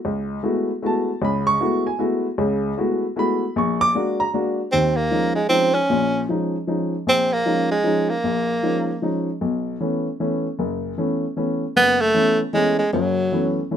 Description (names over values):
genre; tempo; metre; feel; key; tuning
jazz; 154 BPM; 3/4; swing 64% on 8ths; F# minor; A4 = 441 Hz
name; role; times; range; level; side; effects
warm baby grand piano; accompaniment; 0.0-13.8 s; F#1 to D6; -21 LUFS; left 1 dB; none
clear tenor saxophone; melody; 4.7-9.3, 11.8-13.7 s; F#3 to Db4; -19 LUFS; right 2 dB; none
room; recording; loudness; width
light reverb; close, detailed microphones; -18 LUFS; side -9 dB against mid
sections
0.0-4.7 A section; 4.7-13.8 B section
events
none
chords
0.0 F#m11; 3.5 A#aug7; 4.7 Eb9sus4; 9.4 B9sus4